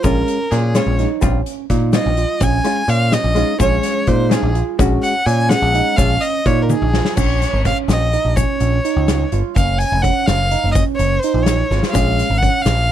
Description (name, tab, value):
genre	progressive instrumental, band music in an uneven meter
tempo	252 BPM (eighths)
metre	5/8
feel	straight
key	Bb minor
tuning	A4 = 439 Hz
part	rich violin	melody	0.0-12.9 s	Ab4 to Ab5	-20 LUFS	equal	none
part	vintage hollow-body jazz guitar	accompaniment	0.0-6.2, 11.9-12.3 s	G3 to Ab4	-20 LUFS	left 4 dB	none
part	barky tine electric piano	arpeggios	0.0-12.8 s	Db4 to F4	-23 LUFS	right 21 dB	phaser
part	picked electric bass	bass	0.0-12.9 s	F1 to Bb2	-17 LUFS	equal	none
part	loose indie drum kit	drums	0.0-12.8 s	crash cymbal, hi-hat, kick drum, snare drum, toms	-21 LUFS	left 1 dB	none
part	tube shaker	percussion	0.0-12.9 s	none	-34 LUFS	left 33 dB	none
room	little or no reverb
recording	none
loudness	-14 LUFS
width	side -10 dB against mid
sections	0.0-7.2 A section; 7.2-12.9 B section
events	violin solo 0.0-7.2; drum fill 6.7-7.2, 11.7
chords	0.0 Bbm7; 1.2 Eb7/Bb; 2.4 Bbm7; 4.8 Ab7sus4/Bb; 6.0 Bbm7; 7.2 Bbm; 9.6 Gbmaj7(no3); 11.9 Bbm